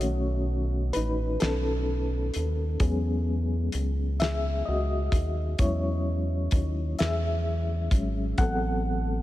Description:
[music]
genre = slow six-eight R&B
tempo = 43 BPM (dotted quarters)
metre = 6/8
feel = straight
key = E major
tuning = A4 = 441 Hz
[part]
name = reed electric piano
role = accompaniment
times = 0.0-9.2 s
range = D#3 to F#5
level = -30 LUFS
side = left 1 dB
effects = fast tremolo
[part]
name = rubbery square bass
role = bass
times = 0.0-9.2 s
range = G#1 to E2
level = -28 LUFS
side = equal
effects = none
[part]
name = warm soul drum kit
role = drums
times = 0.0-8.6 s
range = hi-hat, kick drum, snare drum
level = -28 LUFS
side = equal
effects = none
[sound]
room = light reverb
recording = none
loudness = -25 LUFS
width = side -15 dB against mid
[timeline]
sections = 0.0-9.2 A section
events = reed electric piano solo 0.0-9.2; break 0.0-2.8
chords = 0.0 B9; 2.8 E69; 8.4 Am6

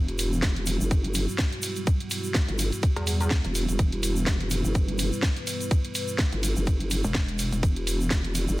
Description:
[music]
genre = bass house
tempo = 125 BPM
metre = 4/4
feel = swing 56% on 16ths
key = E minor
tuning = A4 = 444 Hz
[part]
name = dark analog pad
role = sustained chords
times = 0.2-8.6 s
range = G3 to D5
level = -34 LUFS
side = right 1 dB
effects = chorus, phaser, sidechain pumping
[part]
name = vowel-sweep wobble bass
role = bass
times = 0.0-8.6 s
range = E1 to G1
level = -27 LUFS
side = equal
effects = chorus, overdrive, sidechain pumping
[part]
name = garage drum kit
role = drums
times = 0.1-8.5 s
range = hi-hat, ride cymbal, snare drum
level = -31 LUFS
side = equal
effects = none
[part]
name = egg shaker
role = percussion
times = 0.2-8.6 s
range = none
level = -36 LUFS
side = equal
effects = none
[part]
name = electronic kick drum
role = drums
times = 0.4-8.2 s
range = none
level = -24 LUFS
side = equal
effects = none
[part]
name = pulsing pluck wobble bass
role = bass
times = 3.0-3.4, 7.0-7.6 s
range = E1 to E2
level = -26 LUFS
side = equal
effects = chorus, tube saturation, sidechain pumping
[sound]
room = digital ambience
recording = dense, heavily limited modern master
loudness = -23 LUFS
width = side -18 dB against mid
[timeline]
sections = 0.0-8.6 A section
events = none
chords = 0.0 Em

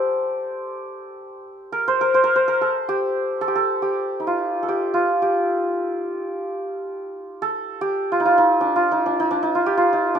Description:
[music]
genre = Persian modal ensemble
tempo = free time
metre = none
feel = none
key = unclear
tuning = A4 = 441 Hz
[part]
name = santur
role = solo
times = 0.0-10.2 s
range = D4 to D5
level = -19 LUFS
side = equal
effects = none
[sound]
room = light reverb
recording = minimal, uncompressed stereo recording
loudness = -19 LUFS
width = side -8 dB against mid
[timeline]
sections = 0.0-10.2 A section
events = none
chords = none

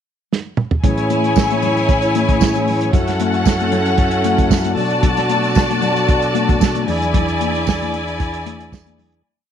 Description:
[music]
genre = disco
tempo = 114 BPM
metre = 4/4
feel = straight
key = unclear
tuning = A4 = 441 Hz
[part]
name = warm soul drum kit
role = drums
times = 0.3-9.2 s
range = hi-hat, kick drum, snare drum, toms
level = -18 LUFS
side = right 2 dB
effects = none
[part]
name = clear studio string section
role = second line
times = 0.8-9.2 s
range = C#4 to A5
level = -19 LUFS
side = left 1 dB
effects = none
[part]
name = mellow tonewheel organ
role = sustained chords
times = 0.8-9.2 s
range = E2 to A4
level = -20 LUFS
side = equal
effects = chorus vibrato, slow rotary speaker
[part]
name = congas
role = percussion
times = 0.8-9.1 s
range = none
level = -24 LUFS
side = left 12 dB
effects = none
[part]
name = tambourine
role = percussion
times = 1.4-8.9 s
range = none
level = -32 LUFS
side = right 16 dB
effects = none
[sound]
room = light reverb, small room ambience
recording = 1960s-style stereo with parts hard left and right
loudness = -14 LUFS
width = side -9 dB against mid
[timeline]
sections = 0.0-0.8 pickup bar; 0.8-9.3 breakdown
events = drum fill 0.3-0.8; fade-out 7.1-9.3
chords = 0.0 N.C.; 0.8 Amaj7; 2.9 F#m7; 4.8 Bm7; 6.9 E7

